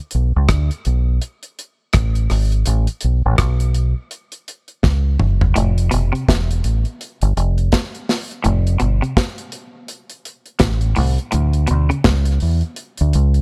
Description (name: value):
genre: roots reggae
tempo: 83 BPM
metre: 4/4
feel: swing 61% on 16ths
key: unclear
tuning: A4 = 440 Hz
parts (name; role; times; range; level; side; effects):
- deep dub fingered electric bass; bass; 0.1-13.4 s; E1 to E2; -18 LUFS; equal; none
- deep reggae drum kit; drums; 0.1-13.4 s; hi-hat, kick drum, rim click, snare drum, toms; -22 LUFS; equal; none
- semi-hollow electric guitar; arpeggios; 5.6-12.0 s; A2 to C#3; -25 LUFS; equal; none
room: studio ambience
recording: none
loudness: -18 LUFS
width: mono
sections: 0.0-5.6 A section; 5.6-13.4 B section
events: drum fill 4.8-5.6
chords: 0.0 D5; 2.7 A; 5.6 F; 11.3 D5